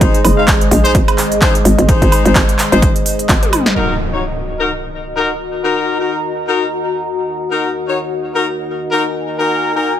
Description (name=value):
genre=bass house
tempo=128 BPM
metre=4/4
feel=swing 57% on 16ths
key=Eb dorian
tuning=A4 = 437 Hz
part: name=dark analog pad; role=sustained chords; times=0.0-10.0 s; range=Eb3 to Gb5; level=-22 LUFS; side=equal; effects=chorus, sidechain pumping
part: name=clear horn section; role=stabs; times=0.0-9.9 s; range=Eb4 to F5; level=-18 LUFS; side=left 3 dB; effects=sidechain pumping, low-pass filter, tape echo
part: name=hollow knocking FM bass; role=bass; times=0.0-3.6 s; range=Gb1 to Bb1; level=-14 LUFS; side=equal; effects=overdrive, sidechain pumping
part: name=big-room dance drum kit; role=drums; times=0.0-3.7 s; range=handclaps, hi-hat, snare drum, toms, woodblock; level=-17 LUFS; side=right 1 dB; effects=overdrive, low-pass filter on hats, low-pass filter on perc, low-pass filter on snare, low-pass filter on toms, low-pass filter on room
part: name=electronic kick drum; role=drums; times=0.0-3.4 s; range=none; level=-14 LUFS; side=equal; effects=overdrive
part: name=warbly tape-like pad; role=texture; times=0.0-10.0 s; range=Gb4 to C6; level=-22 LUFS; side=left 1 dB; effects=chorus, built-in reverb, sidechain pumping
part: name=impact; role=sound effects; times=3.8-5.6 s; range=none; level=-23 LUFS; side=equal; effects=none
room=light reverb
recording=none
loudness=-12 LUFS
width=side -10 dB against mid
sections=0.0-3.8 A section; 3.8-10.0 B section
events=drum fill 3.4-3.8; impact 3.8-5.6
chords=0.0 Ab; 3.8 Ebm